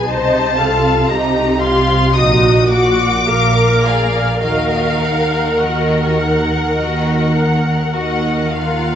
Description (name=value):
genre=classical, slow romantic movement for string orchestra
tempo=51-58 BPM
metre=4/4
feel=rubato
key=Eb minor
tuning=A4 = 440 Hz
part: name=rich symphonic violin section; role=melody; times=0.0-9.0 s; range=F5 to Eb6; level=-19 LUFS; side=left 3 dB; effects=none
part: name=warm chamber violin section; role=second line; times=0.0-9.0 s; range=Eb4 to Gb5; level=-20 LUFS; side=left 2 dB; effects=none
part: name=rich symphonic viola section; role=accompaniment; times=0.0-8.5 s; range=Gb4 to C5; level=-18 LUFS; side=equal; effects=none
part: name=warm symphonic cello section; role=bass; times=0.1-8.9 s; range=Bb2 to Eb3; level=-19 LUFS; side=right 2 dB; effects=none
part: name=warm symphonic double bass section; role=bass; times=0.1-8.9 s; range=Bb1 to Eb2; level=-20 LUFS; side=right 2 dB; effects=none
room=wet recital hall reverb, RT60 1.6 s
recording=nothing above 8.0 kHz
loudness=-12 LUFS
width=side -9 dB against mid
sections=0.0-9.0 A section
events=none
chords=0.1 F7/C; 2.2 Ebm/Bb; 3.3 Bb7; 4.4 Ebm